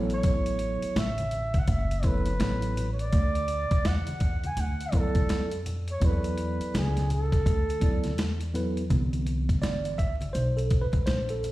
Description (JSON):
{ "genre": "hip hop, jazz-hop", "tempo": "83 BPM", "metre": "4/4", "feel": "swing 62% on 16ths", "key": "A major", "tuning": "A4 = 440 Hz", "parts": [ { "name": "tine electric piano", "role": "accompaniment", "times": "0.0-11.5 s", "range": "D3 to E5", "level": "-32 LUFS", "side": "right 1 dB", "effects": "medium stereo tremolo" }, { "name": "upright bass", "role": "bass", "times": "0.0-11.5 s", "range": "F#1 to F2", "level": "-29 LUFS", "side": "equal", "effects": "none" }, { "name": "breathy flugelhorn", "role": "melody", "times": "0.1-8.5 s", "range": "G#4 to G#5", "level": "-32 LUFS", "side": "right 1 dB", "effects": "none" }, { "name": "boom bap sampler-style drum kit", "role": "drums", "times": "0.1-11.5 s", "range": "hi-hat, kick drum, snare drum", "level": "-27 LUFS", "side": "equal", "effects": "none" }, { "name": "maracas and congas", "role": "percussion", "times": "0.1-11.5 s", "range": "none", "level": "-40 LUFS", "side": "left 2 dB", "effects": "none" } ], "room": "small room ambience", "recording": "played on a big sound system in a bare room, stone room reverb, vinyl crackle", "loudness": "-24 LUFS", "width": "side -17 dB against mid", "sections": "0.0-8.9 A section; 8.9-11.5 B section", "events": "tine electric piano solo 8.9-11.5", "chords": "0.0 A6; 2.4 Aadd9; 3.1 Dadd9; 6.0 E13sus4; 8.9 Cmaj7" }